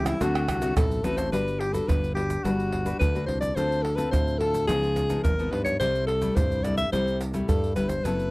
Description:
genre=samba and choro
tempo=107 BPM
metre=4/4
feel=straight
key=G major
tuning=A4 = 440 Hz
part: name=clear alto saxophone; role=melody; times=0.0-8.3 s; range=E4 to E5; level=-27 LUFS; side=left 1 dB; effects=none
part: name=nylon-string guitar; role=accompaniment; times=0.0-8.3 s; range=G2 to B4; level=-30 LUFS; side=left 2 dB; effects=none
part: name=modern bright fingered electric bass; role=bass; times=0.0-8.3 s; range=F#1 to G2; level=-29 LUFS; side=equal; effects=none
part: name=egg shaker, surdo, pandeiro and tamborim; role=percussion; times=0.1-8.3 s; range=none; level=-29 LUFS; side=right 1 dB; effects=none
room=little or no reverb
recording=dry, close 1970s-style studio recording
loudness=-23 LUFS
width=side -22 dB against mid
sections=0.0-1.3 A section; 1.3-8.3 B section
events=none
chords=0.2 D7; 1.3 Gmaj7; 3.6 Dm7; 4.7 C#9; 5.8 C6

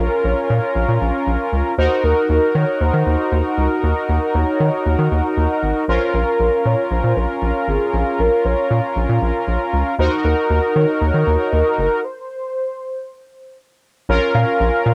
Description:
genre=synth-pop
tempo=117 BPM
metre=4/4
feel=straight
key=Bb minor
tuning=A4 = 439 Hz
part: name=warm velvety synth lead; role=melody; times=0.0-14.9 s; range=Ab4 to F5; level=-24 LUFS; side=equal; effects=chorus, cassette tape
part: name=analog synth brass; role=accompaniment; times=0.0-14.9 s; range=Db4 to Bb4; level=-22 LUFS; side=equal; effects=chorus, cassette tape
part: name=rubbery square bass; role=bass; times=0.0-14.9 s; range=Gb1 to Eb3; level=-20 LUFS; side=equal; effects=none
room=wet booth ambience, RT60 0.2 s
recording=home recording on cassette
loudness=-18 LUFS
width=mono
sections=0.0-14.1 A section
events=stop 12.0-14.1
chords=0.0 Bbm; 1.8 Ebm7; 5.9 Bbm; 10.0 Ebm7; 12.0 N.C.; 14.1 Bbm

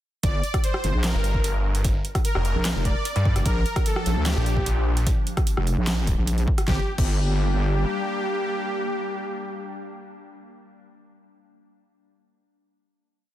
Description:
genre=heavy wobble dubstep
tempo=149 BPM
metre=4/4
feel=half-time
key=G minor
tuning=A4 = 440 Hz
part: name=soft supersaw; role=melody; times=0.2-10.3 s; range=G4 to D5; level=-30 LUFS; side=equal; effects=dub echo
part: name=wobble bass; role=bass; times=0.2-7.8 s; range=F1 to D2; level=-23 LUFS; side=equal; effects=chorus, overdrive
part: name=big-room dance drum kit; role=drums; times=0.2-7.1 s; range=crash cymbal, handclaps, hi-hat, rim click, snare drum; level=-30 LUFS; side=equal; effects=none
part: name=electronic kick drum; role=drums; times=0.2-7.1 s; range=none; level=-24 LUFS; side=equal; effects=none
part: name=snarling distorted saw bass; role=bass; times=1.1-5.1 s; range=F1 to G2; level=-23 LUFS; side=equal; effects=distortion, overdrive
part: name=evolving wavetable pad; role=sustained chords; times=3.7-9.9 s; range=F3 to D4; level=-34 LUFS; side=left 2 dB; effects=ensemble chorus, built-in reverb, sidechain pumping
room=light reverb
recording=dense, heavily limited modern master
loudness=-21 LUFS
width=side -13 dB against mid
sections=0.2-6.7 drop; 6.7-9.9 final chord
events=drop 0.2-6.7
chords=0.2 Gm; 3.5 Bb; 6.7 Gm

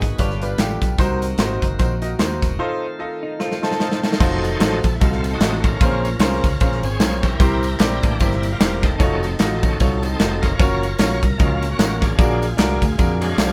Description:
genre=uptempo gospel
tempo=150 BPM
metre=4/4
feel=swing 58% on 8ths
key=Bb harmonic minor from 4.2 s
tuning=A4 = 440 Hz
part: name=clear grand piano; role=accompaniment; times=0.0-13.5 s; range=G2 to Eb5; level=-26 LUFS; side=equal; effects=none
part: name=bright tonewheel organ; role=sustained chords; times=0.0-13.5 s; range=Db3 to Db5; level=-29 LUFS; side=equal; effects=slow rotary speaker, overdrive
part: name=fingered electric bass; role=bass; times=0.0-13.5 s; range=E1 to F2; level=-26 LUFS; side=equal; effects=none
part: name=modern studio drum kit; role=drums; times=0.0-13.5 s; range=crash cymbal, hi-hat, kick drum, ride cymbal, snare drum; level=-22 LUFS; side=equal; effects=none
part: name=tambourine and handclaps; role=percussion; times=0.0-13.5 s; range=none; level=-36 LUFS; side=equal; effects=none
part: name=clean electric guitar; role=second line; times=0.2-4.2 s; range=Eb4 to Db5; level=-31 LUFS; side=equal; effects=slapback echo
room=moderate small room reverb, RT60 0.6 s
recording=band playing live in one room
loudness=-19 LUFS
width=mono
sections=0.0-4.2 A section; 4.2-13.5 B section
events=break 2.6-4.2; drum fill 3.4-4.2; tonewheel organ solo 4.2-13.5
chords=0.2 G7; 1.0 Cm7b5; 2.6 F7; 4.2 F7b9; 5.8 Bbm9; 7.4 C7; 9.0 F7b9b13; 10.6 Gbmaj7; 12.2 Bb7b13

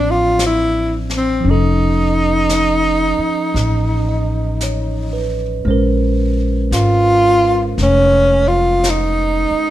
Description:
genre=jazz ballad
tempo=57 BPM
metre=4/4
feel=swing 66% on 8ths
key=unclear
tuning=A4 = 440 Hz
part: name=breathy tenor saxophone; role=melody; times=0.0-9.7 s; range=C4 to F4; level=-15 LUFS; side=right 1 dB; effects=none
part: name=bell-like tine electric piano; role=accompaniment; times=0.0-9.7 s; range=F3 to E5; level=-21 LUFS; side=right 2 dB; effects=none
part: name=upright bass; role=bass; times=0.0-9.5 s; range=F1 to Bb1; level=-18 LUFS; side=left 1 dB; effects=none
part: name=jazz brush drum kit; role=drums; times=0.4-9.7 s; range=brushed snare drum, hi-hat, snare drum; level=-26 LUFS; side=left 2 dB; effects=none
room=light reverb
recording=minimal, uncompressed stereo recording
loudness=-13 LUFS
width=side -13 dB against mid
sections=0.0-9.7 A section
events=none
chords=0.0 Dm9; 1.4 Faug7; 5.7 Bbm9

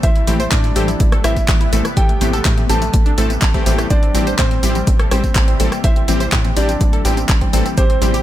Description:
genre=progressive house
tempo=124 BPM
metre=4/4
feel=straight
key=A minor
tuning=A4 = 442 Hz
part: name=warm concert grand piano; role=melody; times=0.0-8.2 s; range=C4 to A5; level=-24 LUFS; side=right 1 dB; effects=tape echo
part: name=soft synth bell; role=second line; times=0.0-8.2 s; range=C5 to A5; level=-31 LUFS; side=right 2 dB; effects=none
part: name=shimmering ambient pad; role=sustained chords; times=0.0-8.2 s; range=C3 to B3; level=-27 LUFS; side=equal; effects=chorus, built-in reverb, sidechain pumping
part: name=wide unison pluck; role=arpeggios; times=0.0-8.2 s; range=A3 to C5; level=-27 LUFS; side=right 1 dB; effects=sidechain pumping, tape echo
part: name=tight sequencer bass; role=bass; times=0.0-8.2 s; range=A1 to A2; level=-20 LUFS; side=equal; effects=sidechain pumping
part: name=breakbeat sampler-style drum kit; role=drums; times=0.0-8.1 s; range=hi-hat, shaker, snare drum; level=-34 LUFS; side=right 3 dB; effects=none
part: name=deep house drum kit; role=drums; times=0.0-8.2 s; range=handclaps, hi-hat, rim click, tambourine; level=-23 LUFS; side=equal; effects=studio reverb
part: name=electronic kick drum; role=drums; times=0.0-7.9 s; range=none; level=-16 LUFS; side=equal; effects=studio reverb
part: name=supersaw stab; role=stabs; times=0.3-8.2 s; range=E3 to A4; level=-23 LUFS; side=left 2 dB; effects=sidechain pumping, tape echo
part: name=congas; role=percussion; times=0.3-8.1 s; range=none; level=-29 LUFS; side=left 5 dB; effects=none
room=little or no reverb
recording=none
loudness=-13 LUFS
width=side -13 dB against mid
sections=0.0-8.2 A section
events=none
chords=0.0 Am7

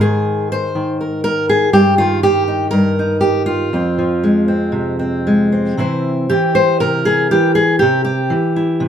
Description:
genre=folk, solo fingerstyle acoustic guitar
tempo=120 BPM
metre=4/4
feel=rubato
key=F minor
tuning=A4 = 440 Hz
part: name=fingerpicked steel-string acoustic guitar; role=solo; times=0.0-8.9 s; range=F2 to C5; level=-13 LUFS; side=equal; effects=none
room=moderate studio reverb, RT60 0.7 s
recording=band playing live in one room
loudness=-13 LUFS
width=side -8 dB against mid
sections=0.0-5.8 A section; 5.8-8.9 B section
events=none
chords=0.0 Abadd9; 1.7 Eb/G; 3.7 Fm; 5.8 C

